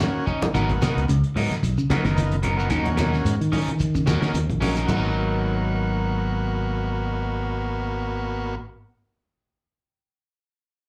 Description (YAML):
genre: afrobeat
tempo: 110 BPM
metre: 4/4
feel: swing 55% on 16ths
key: G# minor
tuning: A4 = 440 Hz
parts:
  - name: overdriven combo organ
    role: accompaniment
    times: 0.0-8.6 s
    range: A#3 to F#4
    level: -31 LUFS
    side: equal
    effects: slapback echo
  - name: clean electric guitar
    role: arpeggios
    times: 0.0-5.1 s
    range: G#2 to D#3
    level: -31 LUFS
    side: equal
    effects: none
  - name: cloth-damped thuddy drum kit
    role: drums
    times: 0.0-5.0 s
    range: crash cymbal, hi-hat, kick drum, snare drum, toms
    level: -32 LUFS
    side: equal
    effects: none
  - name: congas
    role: percussion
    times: 0.0-5.0 s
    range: none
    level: -30 LUFS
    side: equal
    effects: none
  - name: shekere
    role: percussion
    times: 0.0-5.0 s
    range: none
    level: -36 LUFS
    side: equal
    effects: none
  - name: electric guitar at the edge of break-up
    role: stabs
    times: 0.3-8.7 s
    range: F#3 to A#4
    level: -31 LUFS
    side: equal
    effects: phaser, slapback echo
  - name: fingered electric bass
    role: bass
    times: 0.5-8.6 s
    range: F#1 to D#3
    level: -27 LUFS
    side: equal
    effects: none
room: little or no reverb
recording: live gig heard through the venue's PA, club reverb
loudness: -23 LUFS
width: mono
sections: 0.5-4.9 A section; 4.9-9.2 B section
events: drum fill 0.0-0.5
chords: 0.0 D#m7; 0.5 G#m9; 2.7 D#m7; 4.9 G#m9